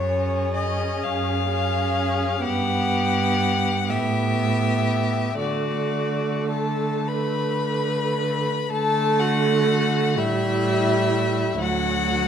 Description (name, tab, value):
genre	classical, slow romantic movement for string quartet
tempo	36-44 BPM (dotted quarters)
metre	6/8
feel	rubato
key	D major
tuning	A4 = 437 Hz
part	rich violin	melody	0.0-12.3 s	C#5 to B5	-26 LUFS	left 7 dB	none
part	rich violin	second line	0.0-12.3 s	E4 to B4	-28 LUFS	left 3 dB	none
part	rich viola	accompaniment	0.0-12.3 s	F#3 to C#4	-26 LUFS	right 4 dB	none
part	rich cello	bass	0.0-12.3 s	D2 to D3	-25 LUFS	right 3 dB	none
room	wet recital hall reverb, RT60 1.6 s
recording	none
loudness	-20 LUFS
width	side -8 dB against mid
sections	0.0-8.7 A section; 8.7-12.3 B section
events	none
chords	0.0 C#/F#; 2.4 G; 3.9 Asus2; 5.4 D; 10.2 A5; 11.6 D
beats	1.03 | 2.44 3.89 | 5.40 7.08 | 8.72 10.18 | 11.61